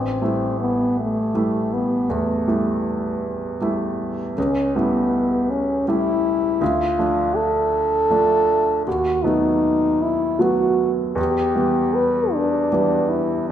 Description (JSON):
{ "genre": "classical, romantic duo for French horn and grand piano", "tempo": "52 BPM (dotted quarters)", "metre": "12/8", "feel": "rubato", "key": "unclear", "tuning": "A4 = 440 Hz", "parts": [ { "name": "warm French horn", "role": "melody", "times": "0.0-13.5 s", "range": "A3 to B4", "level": "-19 LUFS", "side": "left 1 dB", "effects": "none" }, { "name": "clear grand piano", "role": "accompaniment", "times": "0.0-13.5 s", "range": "A1 to E4", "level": "-22 LUFS", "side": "right 2 dB", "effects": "none" } ], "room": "wet recital hall reverb, RT60 1.4 s", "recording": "minimal, uncompressed stereo recording", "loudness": "-18 LUFS", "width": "side -10 dB against mid", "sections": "0.0-13.5 A section", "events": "none", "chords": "0.0 A7(no3); 4.4 A7/C#; 6.6 Dm; 8.9 B7/D#; 11.2 Em" }